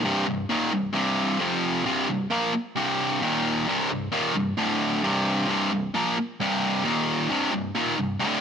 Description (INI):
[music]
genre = metal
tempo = 132 BPM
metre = 4/4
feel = straight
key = C minor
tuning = A4 = 440 Hz
[part]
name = distorted electric guitar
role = solo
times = 0.0-8.4 s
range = C2 to Bb3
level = -22 LUFS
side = equal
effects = overdrive
[sound]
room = light reverb, digital ambience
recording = none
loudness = -22 LUFS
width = side -7 dB against mid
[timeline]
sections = 0.0-8.4 A section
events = none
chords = 0.0 Cm; 1.4 F5; 1.8 C5; 3.2 Eb5; 3.7 Cm; 4.6 D5; 5.0 C5; 6.8 Eb5; 7.3 Cm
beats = | 0.03 0.48 0.94 1.39 | 1.85 2.30 2.76 3.21 | 3.67 4.12 4.57 5.03 | 5.48 5.93 6.39 6.84 | 7.30 7.75 8.21